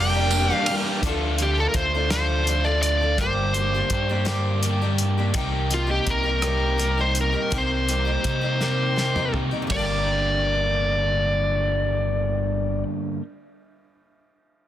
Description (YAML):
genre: folk rock and heartland rock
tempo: 55 BPM (dotted quarters)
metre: 6/8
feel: straight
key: G minor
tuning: A4 = 440 Hz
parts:
  - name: smooth overdriven lead guitar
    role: melody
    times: 0.0-12.8 s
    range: F4 to G5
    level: -24 LUFS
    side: left 1 dB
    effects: none
  - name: picked twelve-string acoustic guitar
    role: accompaniment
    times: 0.0-13.3 s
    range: G2 to A4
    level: -30 LUFS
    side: left 3 dB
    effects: none
  - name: warm studio string section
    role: sustained chords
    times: 0.0-1.0 s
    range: D4 to D5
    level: -37 LUFS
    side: left 3 dB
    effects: none
  - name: crunchy overdriven guitar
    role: riff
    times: 0.0-13.2 s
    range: G2 to Bb4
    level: -28 LUFS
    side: right 1 dB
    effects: none
  - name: fingered electric bass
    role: bass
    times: 0.0-12.8 s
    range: F1 to C3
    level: -25 LUFS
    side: equal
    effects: none
  - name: cloth-damped thuddy drum kit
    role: drums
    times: 0.3-9.9 s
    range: hi-hat, kick drum, ride cymbal, rim click, snare drum, toms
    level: -29 LUFS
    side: equal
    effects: none
  - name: tambourine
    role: percussion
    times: 0.3-0.5 s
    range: none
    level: -30 LUFS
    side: right 11 dB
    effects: none
room: small room ambience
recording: dense, heavily limited modern master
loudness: -20 LUFS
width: side -12 dB against mid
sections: 0.0-1.0 A section; 1.0-9.7 B section; 9.7-14.1 C section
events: drum fill 8.6-9.7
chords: 0.0 Gm; 1.0 Dm; 3.2 Gm; 5.4 Cm7; 9.7 Gm